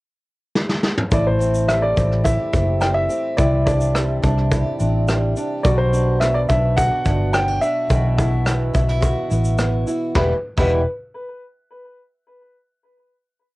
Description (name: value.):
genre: acoustic pop.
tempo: 106 BPM.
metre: 4/4.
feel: straight.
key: E minor.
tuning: A4 = 440 Hz.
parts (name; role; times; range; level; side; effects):
soft brush drum kit; drums; 0.6-10.7 s; crash cymbal, kick drum, rim click, shaker, snare drum, toms; -22 LUFS; equal; cassette tape.
clear upright piano; melody; 1.1-10.8 s; B4 to G5; -22 LUFS; equal; cassette tape, analog delay.
nylon-string guitar; accompaniment; 1.1-10.8 s; E2 to G4; -24 LUFS; equal; cassette tape.
picked steel-string acoustic guitar; arpeggios; 1.1-10.8 s; E3 to G4; -32 LUFS; right 5 dB; cassette tape.
vintage muted fingered electric bass; bass; 1.1-10.8 s; E1 to C2; -20 LUFS; equal; tube saturation.
room: light reverb.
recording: home recording on cassette.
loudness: -16 LUFS.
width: side -20 dB against mid.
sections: 0.0-1.1 pickup bar; 1.1-10.2 pre-chorus; 10.2-12.4 final chord.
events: drum fill 0.6-1.1.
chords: 0.0 N.C.; 1.1 Am7; 3.4 Cadd9; 5.7 Gmaj7/B; 7.9 Bsus4; 10.2 Em.